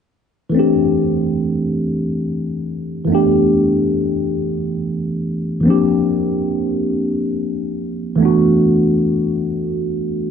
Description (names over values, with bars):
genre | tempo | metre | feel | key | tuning
R&B | 47 BPM (dotted quarters) | 6/8 | straight | D minor | A4 = 440 Hz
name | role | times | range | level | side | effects
tine electric piano | accompaniment | 0.5-10.3 s | E3 to G4 | -15 LUFS | equal | phaser
room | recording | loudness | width
moderate plate reverb, RT60 2.5 s | nothing above 10.3 kHz | -15 LUFS | side -7 dB against mid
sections
0.5-10.3 A section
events
none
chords
0.5 D9sus4; 3.1 A9sus4; 5.6 C9sus4; 8.2 E9sus4